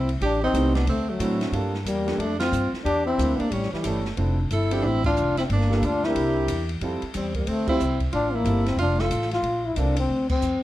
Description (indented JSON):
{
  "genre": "jazz, small-group swing and bop",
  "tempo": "182 BPM",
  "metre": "4/4",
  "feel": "swing 63% on 8ths",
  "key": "F major",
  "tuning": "A4 = 440 Hz",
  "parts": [
    { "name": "breathy trombone", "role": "melody", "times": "0.0-10.6 s", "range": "E3 to F4", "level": "-25 LUFS", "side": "left 3 dB", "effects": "plate reverb" },
    { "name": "clear tenor saxophone", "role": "second line", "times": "0.0-9.3 s", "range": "G3 to A4", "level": "-29 LUFS", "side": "right 4 dB", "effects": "none" },
    { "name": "upright bass", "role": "bass", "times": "0.0-10.6 s", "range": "F1 to A2", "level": "-26 LUFS", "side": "equal", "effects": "none" },
    { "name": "open jazz drum kit", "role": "drums", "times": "0.1-10.5 s", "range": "crash cymbal, hi-hat, kick drum, ride cymbal, snare drum", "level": "-33 LUFS", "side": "equal", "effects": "none" },
    { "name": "clear concert grand piano", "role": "accompaniment", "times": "0.5-10.0 s", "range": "F3 to C5", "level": "-29 LUFS", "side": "right 2 dB", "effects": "none" }
  ],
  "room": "moderate large studio reverb, RT60 0.8 s",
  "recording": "dark, warm production",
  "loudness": "-21 LUFS",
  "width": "side -14 dB against mid",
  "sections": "0.0-9.4 A section; 9.4-10.6 B section",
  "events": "band accent 2.4, 5.0, 7.6, 10.3",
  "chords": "0.2 Am7b5; 0.9 D7; 1.5 Gm7; 2.9 Em7b5; 3.5 A7; 4.2 Dm9; 5.5 Gm7; 6.2 C7; 6.8 Fmaj9; 8.8 F; 9.4 Bbmaj9"
}